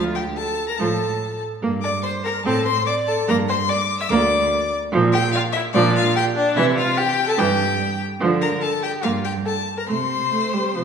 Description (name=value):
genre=quick classical-period movement for string quartet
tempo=145 BPM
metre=4/4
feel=straight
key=unclear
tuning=A4 = 440 Hz
part: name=rich violin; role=melody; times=0.0-10.8 s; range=D5 to E6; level=-24 LUFS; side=left 7 dB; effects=none
part: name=rich violin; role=second line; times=0.0-10.8 s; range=D4 to E5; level=-24 LUFS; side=left 1 dB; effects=none
part: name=warm viola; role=accompaniment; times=0.0-10.8 s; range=E3 to C4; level=-24 LUFS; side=right 3 dB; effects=none
part: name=warm cello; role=bass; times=0.0-10.8 s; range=D2 to D3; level=-24 LUFS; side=right 4 dB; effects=none
room=wet concert hall reverb, RT60 2.2 s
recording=studio reverb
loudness=-18 LUFS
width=side -6 dB against mid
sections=0.0-10.8 A section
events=none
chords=0.0 Dm; 1.6 Gm; 2.5 Amadd11; 3.3 Gm; 4.9 Bb6; 6.6 C; 8.2 Dm; 9.0 Gm; 9.9 Am7/C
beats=0.38 0.79 1.21 | 1.62 2.04 2.45 2.86 | 3.28 3.69 4.10 4.51 | 4.93 5.34 5.75 6.16 | 6.57 6.97 7.38 7.79 | 8.21 8.62 9.04 9.46 | 9.88 10.31 10.74